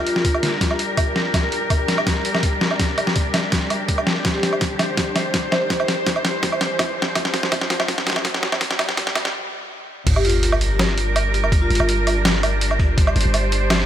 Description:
half-time drum and bass; 165 BPM; 4/4; half-time; G minor; A4 = 441 Hz
vibraphone with soft mallets; melody; 0.0-0.5, 4.3-6.1, 10.2-12.1 s; F4 to C5; -27 LUFS; left 1 dB; low-pass filter, ping-pong delay
rich studio cello section; sustained chords; 0.0-13.9 s; G3 to C5; -24 LUFS; equal; vintage 12-bit sampler grit, sidechain pumping
riser and sub drop; sound effects; 0.9-11.5 s; -32 LUFS; equal
boom bap sampler-style drum kit; drums; 0.1-13.8 s; crash cymbal, hi-hat, snare drum, woodblock; -21 LUFS; right 1 dB; studio reverb
electronic kick drum; drums; 0.2-13.1 s; -22 LUFS; equal; studio reverb
long sustained 808-style bass; bass; 10.1-13.9 s; G1; -21 LUFS; equal
light reverb; high-pass filter; -17 LUFS; side -10 dB against mid
0.0-10.1 A section; 10.1-13.9 B section
build-up 0.0-10.1; drum fill 0.0-9.3; filter sweep on vibraphone 0.0-10.1; filter sweep 0.0-10.1; riser 0.9-9.3; break 9.3-10.1; drop 10.1-13.9; impact 10.1-11.5
0.0 Gm
0.25 0.61 0.98 | 1.34 1.70 2.07 2.43 | 2.79 3.16 3.52 3.88 | 4.25 4.61 4.98 5.34 | 5.70 6.07 6.43 6.79 | 7.16 7.52 7.88 8.25 | 8.61 8.98 9.34 9.70 | 10.07 10.43 10.79 11.16 | 11.52 11.88 12.25 12.61 | 12.98 13.34 13.70

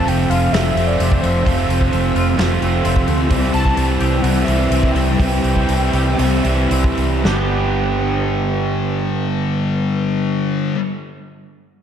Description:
rock, shoegaze and dream pop; 110-130 BPM; 4/4; straight; G major; A4 = 440 Hz
warm velvety synth lead; melody; 0.0-6.7 s; C5 to A5; -24 LUFS; left 1 dB; chorus, analog delay
twangy electric guitar; arpeggios; 0.0-10.8 s; E3 to G4; -27 LUFS; equal; ensemble chorus, analog delay
overdriven semi-hollow guitar; riff; 0.0-10.8 s; F2 to G4; -20 LUFS; right 6 dB; reverse reverb
thick fuzz guitar; riff; 0.0-10.8 s; F2 to C4; -21 LUFS; left 6 dB; distortion, lush chorus
vintage muted fingered electric bass; bass; 0.0-10.7 s; F1 to D2; -20 LUFS; equal
loose indie drum kit; drums; 0.1-7.4 s; hi-hat, kick drum, snare drum; -23 LUFS; equal
wet lush hall reverb, RT60 1.9 s, small room ambience; dreamy mix soaked in reverb; -15 LUFS; side -8 dB against mid
0.0-7.2 A section; 7.2-11.6 B section
slowing down 3.3-7.2
0.0 F; 3.3 C6; 7.2 G
0.07 0.53 0.99 | 1.46 1.92 2.38 2.84 | 3.30 3.77 4.24 4.71 | 5.19 5.68 6.19 6.71 | 7.24 7.79 8.33 8.88 | 9.42 9.97 10.51

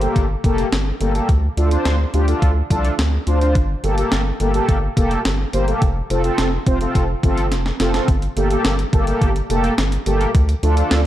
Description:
synth-pop; 106 BPM; 4/4; straight; G minor; A4 = 440 Hz
mellow synth brass; accompaniment; 0.0-11.0 s; Bb3 to C5; -20 LUFS; equal; chorus
rubbery square bass; bass; 0.0-11.1 s; F1 to D2; -19 LUFS; equal
clean 12-bit digital drum machine; drums; 0.0-11.0 s; hi-hat, kick drum, snare drum; -20 LUFS; equal; overdrive
light reverb; dark, warm production; -16 LUFS; side -13 dB against mid
0.0-8.1 A section; 8.1-11.1 B section
drum fill 7.5-8.1
0.0 Gmadd9; 1.3 Dm; 3.6 Gmadd9; 5.8 F; 8.1 Gmadd9; 10.3 Dm
0.16 0.72 | 1.29 1.86 2.42 2.99 | 3.55 4.12 4.69 5.25 | 5.82 6.38 6.95 7.52 | 8.08 8.65 9.21 9.78 | 10.35 10.91

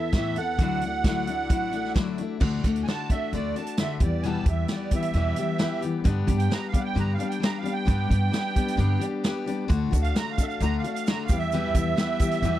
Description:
folk rock and heartland rock; 132 BPM; 4/4; straight; A4 = 440 Hz
musette accordion; melody; 0.0-12.6 s; D5 to Bb5; -30 LUFS; right 7 dB
picked steel-string acoustic guitar; accompaniment; 0.0-12.6 s; E2 to A4; -28 LUFS; left 5 dB
tonewheel organ; sustained chords; 0.0-12.6 s; D4 to D5; -40 LUFS; right 1 dB; chorus vibrato, slow rotary speaker
upright bass; bass; 0.0-12.6 s; A1 to G2; -27 LUFS; equal
vintage drum kit; drums; 0.1-12.5 s; crash cymbal, hi-hat, kick drum, snare drum; -25 LUFS; equal
egg shaker; percussion; 9.7-12.5 s; -44 LUFS; right 22 dB
little or no reverb; dry, close 1970s-style studio recording; -23 LUFS; side -13 dB against mid
0.0-2.4 A section; 2.4-12.6 B section
accordion solo 2.4-12.6
0.0 Asus2; 0.6 Dadd9; 2.4 D; 4.0 Em; 6.1 G; 9.7 D; 11.3 Em
0.14 | 0.59 1.05 1.50 1.96 | 2.41 2.87 3.33 3.78 | 4.24 4.69 5.15 5.61 | 6.06 6.52 6.97 7.43 | 7.88 8.34 8.79 9.25 | 9.71 10.16 10.62 11.07 | 11.53 11.98 12.43

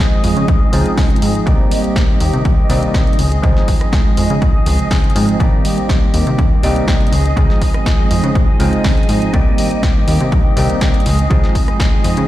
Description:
filtered disco house; 122 BPM; 4/4; straight; A4 = 440 Hz
bell-like tine electric piano; accompaniment; 0.0-12.3 s; F3 to Eb4; -20 LUFS; right 1 dB; phaser, sidechain pumping, low-pass filter
string machine, full ensemble; sustained chords; 0.0-12.3 s; Eb5; -25 LUFS; equal; ensemble chorus, sidechain pumping, low-pass filter
clean electric guitar; riff; 0.0-12.3 s; Eb3 to Ab4; -24 LUFS; left 2 dB; sidechain pumping, low-pass filter
plucky analog bass; bass; 0.2-12.3 s; C2 to Db3; -18 LUFS; equal; sidechain pumping, low-pass filter
punchy analog drum machine; drums; 0.2-12.3 s; hi-hat, rim click, snare drum; -25 LUFS; equal; sidechain pumping on hats, sidechain pumping on cymbals
tambourine; percussion; 0.2-12.3 s; barely audible
electronic kick drum; drums; 0.5-11.9 s; -14 LUFS; equal; overdrive
digital ambience; played on a big sound system in a bare room, large studio reverb; -11 LUFS; side -14 dB against mid
0.0-12.3 A section
filter sweep 0.0-12.3
0.0 Dbmaj7; 1.5 Cm7; 3.2 Dbmaj7; 5.4 Cm7; 7.1 Dbmaj7; 9.3 Cm7; 11.1 Dbmaj7
0.48 0.98 | 1.47 1.96 2.45 2.94 | 3.44 3.93 4.42 4.91 | 5.40 5.89 6.39 6.88 | 7.37 7.86 8.35 8.85 | 9.34 9.83 10.32 10.81 | 11.30 11.80

